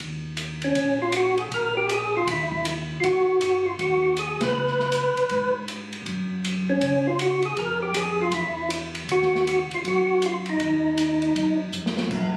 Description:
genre	soul jazz organ trio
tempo	158 BPM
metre	4/4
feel	swing 64% on 8ths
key	Eb minor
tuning	A4 = 441 Hz
part	mellow tonewheel organ	bass	0.0-12.4 s	G1 to Ab2	-34 LUFS	equal	chorus vibrato, slow rotary speaker
part	open jazz drum kit	drums	0.0-12.2 s	crash cymbal, hi-hat, kick drum, ride cymbal, snare drum	-34 LUFS	equal	none
part	percussive tonewheel organ	melody	0.6-11.6 s	Db4 to Cb5	-24 LUFS	equal	slow rotary speaker, overdrive, chorus vibrato
room	moderate large studio reverb, RT60 1.4 s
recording	recorded on a phone in the room, club reverb, compression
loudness	-24 LUFS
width	mono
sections	0.0-12.1 A section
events	band accent 4.4; drum fill 11.7-12.1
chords	0.0 Eb5; 1.5 Bb5; 2.3 N.C.; 3.0 Ab5; 4.5 Db5; 6.1 Gb5; 7.6 Fmadd9; 8.3 N.C.; 9.1 Ebmadd9

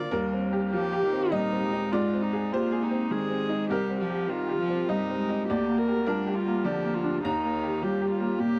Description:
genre	neoclassical piano and strings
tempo	101 BPM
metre	3/4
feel	rubato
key	Eb major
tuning	A4 = 440 Hz
part	rich cello	second line	0.0-8.6 s	D3 to Bb3	-32 LUFS	equal	none
part	bright upright piano	accompaniment	0.0-8.6 s	C2 to Bb5	-31 LUFS	equal	none
part	rich viola	accompaniment	0.0-8.6 s	D4 to D5	-33 LUFS	equal	none
room	light reverb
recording	dry, close 1970s-style studio recording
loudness	-27 LUFS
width	mono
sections	0.1-8.6 A section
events	none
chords	0.1 Eb6; 1.9 Ab; 3.7 Cm7; 5.5 Gm/D; 7.2 Eb

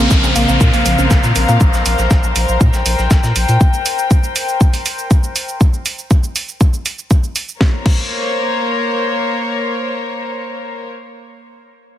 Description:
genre	melodic techno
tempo	120 BPM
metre	4/4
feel	straight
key	Bb dorian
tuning	A4 = 440 Hz
part	clear studio string section	sustained chords	0.0-10.9 s	Bb3 to G5	-19 LUFS	left 2 dB	sidechain pumping, low-pass filter
part	woody wave-folded pluck	arpeggios	0.0-1.6 s	F3 to Bb4	-22 LUFS	right 1 dB	chorus, sidechain pumping, ping-pong delay
part	brassy analog pad	stabs	0.0-1.6 s	Db3 to C4	-21 LUFS	right 1 dB	chorus, sidechain pumping, ping-pong delay
part	round analog bass	bass	0.0-3.6 s	Bb1 to Bb2	-16 LUFS	equal	sidechain pumping
part	downlifter	sound effects	0.0-3.6 s	none	-21 LUFS	equal	none
part	breakbeat sampler-style drum kit	drums	0.1-3.6 s	hi-hat, shaker, snare drum	-28 LUFS	equal	high-pass filter on snare, sidechain pumping on perc, high-pass filter on perc, sidechain pumping on hats, high-pass filter on hats
part	electronic kick drum	drums	0.1-8.0 s	none	-12 LUFS	equal	none
part	house drum kit	drums	0.1-8.0 s	crash cymbal, hi-hat, shaker, snare drum	-22 LUFS	right 3 dB	sidechain pumping on perc, sidechain pumping on hats, sidechain pumping on toms, sidechain pumping on cymbals
room	light reverb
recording	heavily compressed radio sound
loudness	-13 LUFS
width	side -12 dB against mid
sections	0.0-7.6 A section; 7.6-11.6 B section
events	filter sweep on synth pluck 0.0-1.6; filter sweep on analog synth pad 0.0-1.6; filter sweep on string section 0.0-5.6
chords	0.0 Bbmadd9

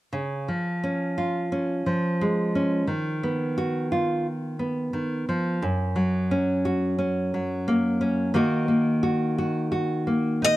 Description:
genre	acoustic folk-pop ballad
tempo	88 BPM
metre	4/4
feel	straight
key	Db mixolydian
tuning	A4 = 440 Hz
part	nylon-string guitar	accompaniment	0.1-10.6 s	Gb2 to Gb4	-23 LUFS	equal	none
part	picked steel-string acoustic guitar	melody	10.4-10.6 s	Eb5	-17 LUFS	left 1 dB	none
room	light reverb, small room ambience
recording	dry, close 1970s-style studio recording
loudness	-23 LUFS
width	side -16 dB against mid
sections	0.1-10.6 A section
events	none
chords	0.1 Db; 2.9 Cb/Eb; 5.6 Gb; 8.4 Ebm

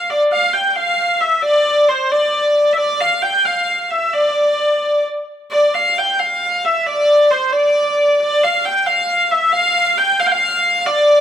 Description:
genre	medieval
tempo	89 BPM (dotted quarters)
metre	6/8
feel	straight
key	D minor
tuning	A4 = 440 Hz
part	clear hurdy-gurdy	solo	0.0-11.2 s	C5 to G5	-13 LUFS	equal	none
room	moderate recital hall reverb, RT60 1.4 s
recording	close, detailed microphones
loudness	-13 LUFS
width	side -10 dB against mid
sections	0.0-5.5 A section; 5.5-11.2 A section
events	none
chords	none

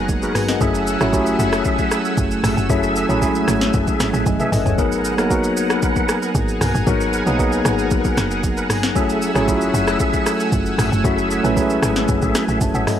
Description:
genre	amapiano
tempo	115 BPM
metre	4/4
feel	straight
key	unclear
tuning	A4 = 440 Hz
part	tine electric piano	accompaniment	0.0-13.0 s	F#3 to A5	-20 LUFS	moving between left 5 dB and right 1 dB	auto-pan
part	lush unison pad	sustained chords	0.0-13.0 s	A3 to E6	-25 LUFS	right 1 dB	chorus, sidechain pumping
part	bright tonewheel organ	stabs	0.0-12.9 s	F#4 to F#5	-26 LUFS	right 1 dB	chorus vibrato, slow rotary speaker, tape echo
part	tight log drum bass	bass	0.0-12.9 s	F#1 to B1	-24 LUFS	equal	none
part	smooth R&B drum kit	drums	0.1-13.0 s	hi-hat, kick drum, rim click, shaker, snare drum, toms	-22 LUFS	equal	overdrive
room	light reverb, digital ambience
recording	dry, gritty hardware recording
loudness	-16 LUFS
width	side -10 dB against mid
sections	0.0-13.0 A section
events	drum fill 4.3-4.8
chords	0.0 G#m9; 0.6 F#m9; 4.8 G#m9; 9.0 F#m9

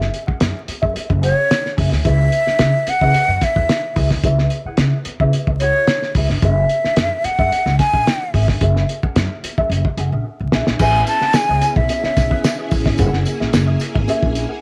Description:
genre	funk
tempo	110 BPM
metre	4/4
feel	straight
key	unclear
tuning	A4 = 440 Hz
part	mellow electric guitar	accompaniment	0.0-14.6 s	C#4 to F#5	-28 LUFS	equal	wah, spring reverb
part	upright bass	bass	0.0-14.4 s	F#1 to C#3	-21 LUFS	equal	none
part	cloth-damped thuddy drum kit	drums	0.0-14.5 s	crash cymbal, hi-hat, kick drum, snare drum	-22 LUFS	equal	none
part	breathy concert flute	melody	1.2-12.7 s	C#5 to A5	-20 LUFS	equal	none
part	string machine, violins	sustained chords	10.8-14.6 s	A#3 to G#4	-27 LUFS	equal	ensemble chorus
part	tambourine	percussion	10.8-14.5 s	none	-39 LUFS	equal	none
room	small room ambience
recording	vinyl crackle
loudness	-17 LUFS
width	mono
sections	0.0-10.8 A section; 10.8-14.6 B section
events	drum fill 10.3-10.8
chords	0.0 F#9; 2.0 C#m7; 6.4 F#9; 10.8 Amaj9; 13.0 F#9

